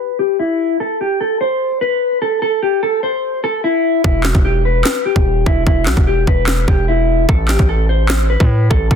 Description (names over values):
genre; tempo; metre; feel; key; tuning
hip hop, trap; 148 BPM; 4/4; half-time; E harmonic minor; A4 = 440 Hz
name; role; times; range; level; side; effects
mellow electric guitar; melody; 0.0-9.0 s; E4 to C5; -16 LUFS; left 2 dB; wide subtle chorus, low-pass filter
distorted 808-style bass; bass; 4.0-9.0 s; D#1 to A2; -16 LUFS; equal; distortion
trap drum kit; drums; 4.0-9.0 s; handclaps, kick drum, snare drum; -15 LUFS; equal; none
room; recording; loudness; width
light reverb, digital ambience; dense, heavily limited modern master; -13 LUFS; side -7 dB against mid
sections
0.0-4.0 A section; 4.0-9.0 B section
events
filter sweep on clean electric guitar 0.0-4.0; hi-hats muted 4.0-9.0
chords
0.0 N.C.; 4.0 Em; 7.3 Am